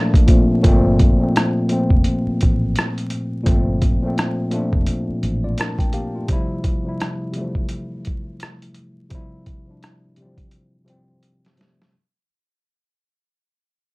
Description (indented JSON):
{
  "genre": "lo-fi hip hop",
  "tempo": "85 BPM",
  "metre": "4/4",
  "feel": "swing 59% on 16ths",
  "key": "G minor",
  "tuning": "A4 = 440 Hz",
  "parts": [
    { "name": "tine electric piano", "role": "accompaniment", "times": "0.0-12.0 s", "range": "Bb2 to A5", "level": "-21 LUFS", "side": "left 1 dB", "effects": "cassette tape, low-pass filter" },
    { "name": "boom bap sampler-style drum kit", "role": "drums", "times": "0.1-11.9 s", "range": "hi-hat, kick drum, rim click, snare drum", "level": "-18 LUFS", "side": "equal", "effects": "none" },
    { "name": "vintage muted fingered electric bass", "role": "bass", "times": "0.6-5.5 s", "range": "F1 to A1", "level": "-22 LUFS", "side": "equal", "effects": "none" }
  ],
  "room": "little or no reverb",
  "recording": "dry, gritty hardware recording, vinyl crackle",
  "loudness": "-16 LUFS",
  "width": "side -26 dB against mid",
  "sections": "0.6-11.9 A section",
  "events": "fade-out 0.6-11.9; drum fill 11.2-11.9",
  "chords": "0.0 Gm11 (rootless); 0.6 Gm11; 6.3 Dm11"
}